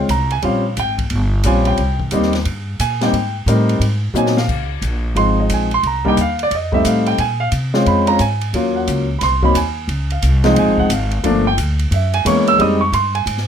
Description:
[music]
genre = jazz, small-group swing and bop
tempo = 178 BPM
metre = 4/4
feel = swing 64% on 8ths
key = unclear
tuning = A4 = 441 Hz
[part]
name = warm concert grand piano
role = accompaniment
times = 0.0-13.5 s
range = Fb3 to Fb6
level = -16 LUFS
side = equal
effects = none
[part]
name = upright bass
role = bass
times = 0.0-13.5 s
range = F1 to C3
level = -18 LUFS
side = equal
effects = none
[part]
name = open jazz drum kit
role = drums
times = 0.1-13.5 s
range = crash cymbal, hi-hat, kick drum, ride cymbal, snare drum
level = -26 LUFS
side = left 1 dB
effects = none
[sound]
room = light reverb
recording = none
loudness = -14 LUFS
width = side -8 dB against mid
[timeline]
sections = 0.0-4.5 A section; 4.5-13.5 A section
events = drum fill 4.1-4.5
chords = 0.4 Bbm13; 1.8 Abmaj9; 3.8 Ab9; 4.5 Dbmaj7; 5.8 Cm7; 6.5 F7; 7.2 Bbm9; 8.5 Ebm7; 9.2 Ab7; 9.9 Dbmaj7; 11.2 Gm7; 11.9 Gb9; 12.6 Fm7

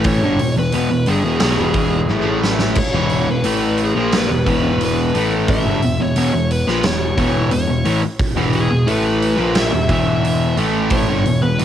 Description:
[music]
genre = hard rock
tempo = 88 BPM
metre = 4/4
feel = straight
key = E mixolydian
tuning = A4 = 437 Hz
[part]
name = bluesy overdriven lead guitar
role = melody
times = 0.0-11.6 s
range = G#4 to E5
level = -23 LUFS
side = left 1 dB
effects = distortion, cassette tape
[part]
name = cranked stack guitar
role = riff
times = 0.0-11.6 s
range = E2 to A#3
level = -21 LUFS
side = right 8 dB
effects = overdrive
[part]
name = crunchy overdriven guitar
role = riff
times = 0.0-11.6 s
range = E2 to A#3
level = -20 LUFS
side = left 7 dB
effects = none
[part]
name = fuzz picked electric bass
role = bass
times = 0.0-11.6 s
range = E1 to B1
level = -22 LUFS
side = right 1 dB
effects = overdrive
[part]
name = huge arena drum kit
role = drums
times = 0.0-11.6 s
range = crash cymbal, hi-hat, kick drum, snare drum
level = -22 LUFS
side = right 1 dB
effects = none
[sound]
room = light reverb, small room ambience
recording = home recording on cassette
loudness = -14 LUFS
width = side -10 dB against mid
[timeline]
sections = 0.0-11.6 A section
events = drum fill 2.1-2.8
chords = 0.0 E5; 2.1 A5; 2.9 E5

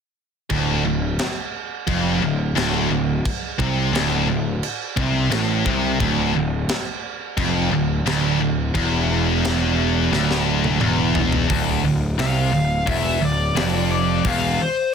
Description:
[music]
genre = heavy metal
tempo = 87 BPM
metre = 4/4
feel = straight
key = D minor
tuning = A4 = 440 Hz
[part]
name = heavy high-gain guitar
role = riff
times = 0.5-14.6 s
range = D2 to C3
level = -24 LUFS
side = left 13 dB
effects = distortion
[part]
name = high-gain distorted guitar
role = riff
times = 0.5-11.5 s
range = D2 to C3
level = -25 LUFS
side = left 2 dB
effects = distortion
[part]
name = sludgy distorted guitar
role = riff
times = 0.5-14.6 s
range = D2 to C3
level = -24 LUFS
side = right 10 dB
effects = overdrive
[part]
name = fuzz picked electric bass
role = bass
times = 0.5-14.6 s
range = D1 to C2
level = -24 LUFS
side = left 1 dB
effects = overdrive
[part]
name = tight metal drum kit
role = drums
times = 0.5-14.4 s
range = crash cymbal, hi-hat, kick drum, snare drum, toms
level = -26 LUFS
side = equal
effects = soft clipping on kick
[part]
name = high-gain lead guitar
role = melody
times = 12.2-14.9 s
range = C5 to F5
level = -23 LUFS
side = left 3 dB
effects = distortion
[sound]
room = little or no reverb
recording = dense, heavily limited modern master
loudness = -18 LUFS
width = side -6 dB against mid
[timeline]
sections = 0.5-11.5 A section; 11.5-14.9 B section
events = drum fill 10.1-11.5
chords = 0.5 Dm

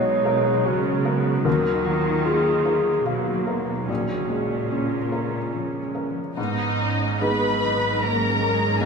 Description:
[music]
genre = cinematic, emotional film score for orchestra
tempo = 74 BPM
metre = 3/4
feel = rubato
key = unclear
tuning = A4 = 438 Hz
[part]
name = dark clarinet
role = second line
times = 0.0-6.0 s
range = F4 to Db5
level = -24 LUFS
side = left 1 dB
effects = none
[part]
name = felt-muted upright piano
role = accompaniment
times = 0.0-8.9 s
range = Bb1 to F5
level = -28 LUFS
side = equal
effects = none
[part]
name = muted studio viola section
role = accompaniment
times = 0.0-8.9 s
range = Gb3 to F4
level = -28 LUFS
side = right 3 dB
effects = none
[part]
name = concert harp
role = arpeggios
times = 0.0-8.9 s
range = Ab2 to F5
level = -30 LUFS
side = left 4 dB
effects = none
[part]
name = muted symphonic cello section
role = bass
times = 0.0-8.9 s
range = Ab2 to Eb3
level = -28 LUFS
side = right 4 dB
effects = none
[part]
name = muted symphonic violin section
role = melody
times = 6.4-8.9 s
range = Eb5 to Cb6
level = -26 LUFS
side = left 2 dB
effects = none
[part]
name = muted symphonic violin section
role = second line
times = 6.4-8.9 s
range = Eb4 to Cb5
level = -26 LUFS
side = left 2 dB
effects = none
[part]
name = muted symphonic double bass section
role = bass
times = 6.4-8.9 s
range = Ab1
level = -32 LUFS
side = right 5 dB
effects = none
[sound]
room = wet recital hall reverb, RT60 1.5 s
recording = recorded in a church or concert hall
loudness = -20 LUFS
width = side -5 dB against mid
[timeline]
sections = 0.0-6.4 A section; 6.4-8.9 B section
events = none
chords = 0.0 Bmaj7; 1.5 Ebmadd9; 3.9 Bbm7; 6.4 Abm

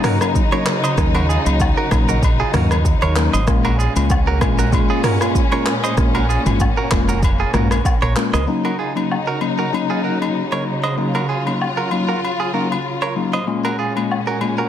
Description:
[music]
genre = afrobeats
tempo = 96 BPM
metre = 4/4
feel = swing 55% on 16ths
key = Eb minor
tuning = A4 = 440 Hz
[part]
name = bell-like tine electric piano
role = accompaniment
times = 0.0-14.6 s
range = Gb3 to F4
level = -22 LUFS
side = left 4 dB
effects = phaser
[part]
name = warm symphonic string section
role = sustained chords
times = 0.0-14.7 s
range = Bb2 to F4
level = -23 LUFS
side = left 1 dB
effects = none
[part]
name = direct-recorded clean electric guitar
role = riff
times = 0.0-14.7 s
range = F4 to Eb5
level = -24 LUFS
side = right 6 dB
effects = spring reverb, ping-pong delay
[part]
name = deep house drum kit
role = drums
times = 0.0-8.5 s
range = handclaps, hi-hat, kick drum, rim click, shaker, toms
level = -19 LUFS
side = equal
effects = overdrive, soft clipping on snare
[part]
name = agogo bells and woodblock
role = percussion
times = 0.2-14.6 s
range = none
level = -27 LUFS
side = left 4 dB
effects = none
[part]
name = fingered electric bass with an envelope filter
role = bass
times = 1.0-8.4 s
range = F1 to Eb2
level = -19 LUFS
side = equal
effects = none
[sound]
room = light reverb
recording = dense, heavily limited modern master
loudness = -15 LUFS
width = side -10 dB against mid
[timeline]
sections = 0.0-8.5 A section; 8.5-14.7 B section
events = none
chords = 0.0 Ebm7; 3.5 Bbm7; 8.5 Ebm7; 13.5 Bbm7

